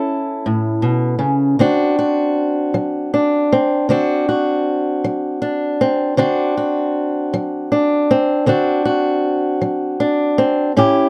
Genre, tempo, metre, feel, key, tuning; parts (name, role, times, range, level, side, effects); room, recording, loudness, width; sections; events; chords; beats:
blues; 52 BPM (dotted quarters); 12/8; straight; A4 = 440 Hz
fingerpicked old ladder-braced acoustic guitar; solo; 0.0-11.1 s; A2 to A4; -17 LUFS; equal
light reverb; close, detailed microphones; -17 LUFS; mono
0.0-11.1 A section
0.0 A; 1.6 D7
0.46 | 1.60 2.75 3.89 5.03 | 6.18 7.32 8.46 9.61 | 10.75